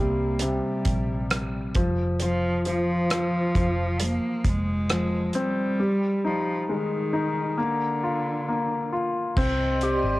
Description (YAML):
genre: pop ballad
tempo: 67 BPM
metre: 4/4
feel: straight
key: unclear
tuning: A4 = 442 Hz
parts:
  - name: warm cello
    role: melody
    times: 0.0-8.9 s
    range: D3 to Bb3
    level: -29 LUFS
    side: right 1 dB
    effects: cassette tape
  - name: clear baby grand piano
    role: accompaniment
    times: 0.0-10.2 s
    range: C3 to G4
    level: -26 LUFS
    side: left 2 dB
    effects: cassette tape
  - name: vintage muted fingered electric bass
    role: bass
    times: 0.0-10.2 s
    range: F1 to C2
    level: -29 LUFS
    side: equal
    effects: none
  - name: modern studio drum kit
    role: drums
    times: 0.4-10.0 s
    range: crash cymbal, hi-hat, kick drum, rim click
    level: -27 LUFS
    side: right 1 dB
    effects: cassette tape
  - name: granular cloud pad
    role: sustained chords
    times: 9.6-10.2 s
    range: G4 to C6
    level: -28 LUFS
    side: right 1 dB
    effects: built-in reverb, cassette tape
room: moderate spring reverb, RT60 2.6 s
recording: home recording on cassette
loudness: -23 LUFS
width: side -18 dB against mid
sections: 0.0-9.4 A section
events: none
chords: 0.0 C5; 1.8 Fm; 5.8 Ab5; 7.6 Bb; 9.4 Cmadd9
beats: 0.41 1.31 | 2.20 3.10 4.00 4.89 | 5.79 6.68 7.58 8.47 | 9.37